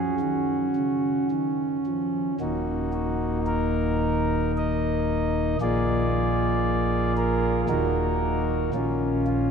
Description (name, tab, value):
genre	classical, chorale-style piece for pipe organ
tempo	54-58 BPM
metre	3/4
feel	rubato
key	Eb minor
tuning	A4 = 440 Hz
part	chamber organ, principal	solo	0.0-9.5 s	Eb1 to Eb5	-22 LUFS	equal	none
room	wet cathedral reverb, RT60 5.6 s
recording	none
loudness	-22 LUFS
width	side -6 dB against mid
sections	0.0-2.4 A section; 2.4-9.5 B section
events	none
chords	0.0 F#5; 2.4 Ebm; 5.6 Bb7; 7.7 Ebm; 8.7 Bbm